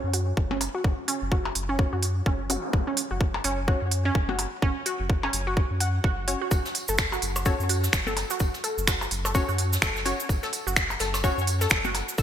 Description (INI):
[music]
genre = minimal techno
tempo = 127 BPM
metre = 4/4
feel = swing 59% on 16ths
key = F# minor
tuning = A4 = 438 Hz
[part]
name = filtered dub chord stab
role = stabs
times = 0.0-11.4 s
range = C#4 to C#5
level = -33 LUFS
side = left 3 dB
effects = chorus, digital delay
[part]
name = round analog bass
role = bass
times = 0.0-12.2 s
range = F#1 to F#2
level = -29 LUFS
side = equal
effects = sidechain pumping
[part]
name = resonant blip pluck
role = riff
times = 0.1-12.2 s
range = C#4 to F#5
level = -31 LUFS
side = right 1 dB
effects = chorus, sidechain pumping, ping-pong delay
[part]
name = garage drum kit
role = drums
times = 0.1-12.1 s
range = finger snaps, hi-hat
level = -27 LUFS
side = right 2 dB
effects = gated reverb
[part]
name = electronic kick drum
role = drums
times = 0.4-12.2 s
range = none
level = -26 LUFS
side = equal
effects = none
[part]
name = percussion blips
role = percussion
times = 0.5-12.1 s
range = none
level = -35 LUFS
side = left 3 dB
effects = digital delay
[part]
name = zap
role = sound effects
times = 2.5-2.6 s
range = none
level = -38 LUFS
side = equal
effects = none
[part]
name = soft brush drum kit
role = drums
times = 6.5-12.2 s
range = hi-hat, snare drum, tambourine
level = -36 LUFS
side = right 1 dB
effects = high-pass filter on hats, high-pass filter on snare, high-pass filter on perc, high-pass filter on room, gated reverb
[part]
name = cabasa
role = percussion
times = 6.5-12.2 s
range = none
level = -34 LUFS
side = right 3 dB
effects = none
[sound]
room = moderate lush hall reverb, RT60 1.9 s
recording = bright 1980s-style digital production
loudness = -23 LUFS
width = side -10 dB against mid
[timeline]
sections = 0.0-12.2 A section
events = none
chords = 0.0 F#5